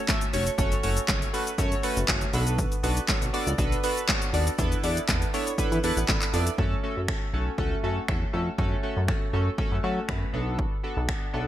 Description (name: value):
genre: dance-pop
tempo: 120 BPM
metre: 4/4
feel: straight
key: F# minor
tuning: A4 = 440 Hz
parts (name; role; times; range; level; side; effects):
- chorused retro synth keys; accompaniment; 0.1-11.5 s; A3 to A5; -29 LUFS; right 1 dB; sidechain pumping
- house drum kit; drums; 0.1-11.2 s; finger snaps, handclaps, hi-hat, kick drum, shaker, snare drum; -27 LUFS; equal; gated reverb
- chorused synth bass; bass; 0.3-11.5 s; E#1 to F#3; -28 LUFS; equal; sidechain pumping
room: light reverb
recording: bright 1980s-style digital production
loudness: -24 LUFS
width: side -12 dB against mid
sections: 0.0-6.6 A section; 6.6-11.5 B section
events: synth keys fill 5.6-6.6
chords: 0.0 F#m; 2.3 Bm7; 4.6 E7sus4; 6.6 F#m; 10.3 Bm7